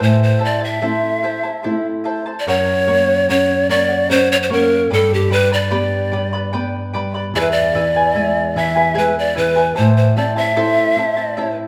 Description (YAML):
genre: andean folk, Andean ensemble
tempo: 74 BPM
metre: 3/4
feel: straight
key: A dorian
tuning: A4 = 440 Hz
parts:
  - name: breathy mellow pan flute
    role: melody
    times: 0.0-11.5 s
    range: G4 to E5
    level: -19 LUFS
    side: equal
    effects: none
  - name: charango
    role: accompaniment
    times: 0.0-11.7 s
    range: E4 to B5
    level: -24 LUFS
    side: equal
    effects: none
  - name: nylon-string guitar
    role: accompaniment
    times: 0.0-11.7 s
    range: E2 to E4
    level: -22 LUFS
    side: equal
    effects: none
room: wet recital hall reverb, RT60 1.6 s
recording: none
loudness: -17 LUFS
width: mono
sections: 0.0-2.5 A section; 2.5-11.7 A section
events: none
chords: 0.0 Am; 2.5 F#; 4.9 G; 7.3 E; 9.8 Am